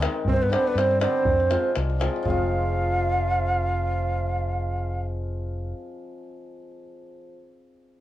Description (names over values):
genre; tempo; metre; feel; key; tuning
balkan folk, Balkan wedding band; 120 BPM; 2/4; swing 55% on 16ths; F dorian sharp4; A4 = 442 Hz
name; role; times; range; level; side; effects
hammered dulcimer; accompaniment; 0.0-7.3 s; D3 to F4; -31 LUFS; left 3 dB; none
fingered electric bass; bass; 0.0-5.7 s; F1 to G2; -26 LUFS; equal; tube saturation
davul; percussion; 0.0-2.5 s; none; -29 LUFS; equal; none
breathy reedy ney; melody; 0.3-5.0 s; B4 to F5; -25 LUFS; right 1 dB; none
dark trumpet; second line; 0.3-5.0 s; B3 to F4; -32 LUFS; right 5 dB; none
room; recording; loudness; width
moderate small room reverb, RT60 0.5 s; worn, warbling old tape, cassette tape, warbly pitch drift; -22 LUFS; side -14 dB against mid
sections
0.0-2.3 A section; 2.3-4.3 B section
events
none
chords
0.3 G; 1.3 Fm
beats
| 0.25 0.76 | 1.26 1.76 | 2.26 2.76 | 3.27 3.77